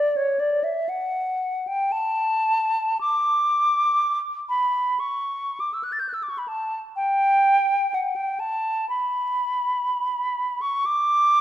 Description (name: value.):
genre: classical, free, expressive piece for unaccompanied flute.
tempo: 60 BPM.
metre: 4/4.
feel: rubato.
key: B minor.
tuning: A4 = 440 Hz.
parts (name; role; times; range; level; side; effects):
mellow silver concert flute; solo; 0.0-11.4 s; C#5 to A6; -21 LUFS; equal; none.
room: moderate scoring stage reverb, RT60 1.7 s.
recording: none.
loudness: -21 LUFS.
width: side -12 dB against mid.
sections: 0.0-11.4 A section.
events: none.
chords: none.